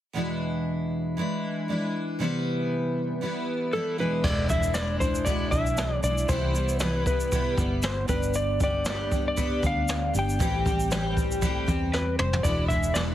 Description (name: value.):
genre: acoustic pop.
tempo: 117 BPM.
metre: 4/4.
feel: swing 55% on 16ths.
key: unclear.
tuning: A4 = 441 Hz.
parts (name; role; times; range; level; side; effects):
picked steel-string acoustic guitar; accompaniment; 0.1-13.1 s; E2 to G4; -28 LUFS; equal; double-tracked left and right.
electric slide guitar; melody; 3.7-13.0 s; A4 to G5; -29 LUFS; equal; digital delay.
vintage muted fingered electric bass; bass; 4.2-13.1 s; E1 to E2; -30 LUFS; equal; none.
jazz brush drum kit; drums; 4.2-13.1 s; crash cymbal, kick drum, shaker, snare drum, toms; -28 LUFS; equal; none.
room: light reverb.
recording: heavily compressed radio sound.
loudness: -24 LUFS.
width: side -12 dB against mid.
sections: 0.1-4.2 A section; 4.2-13.1 B section.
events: drum fill 11.9-12.4.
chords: 0.1 E7; 2.2 Cmaj7; 4.0 E7; 6.3 Cmaj7; 8.1 G; 10.4 Am7; 12.4 E7.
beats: | 0.14 0.65 1.16 1.68 | 2.19 2.70 3.22 3.73 | 4.24 4.76 5.27 5.78 | 6.29 6.81 7.32 7.83 | 8.35 8.86 9.37 9.88 | 10.40 10.91 11.42 11.94 | 12.45 12.96.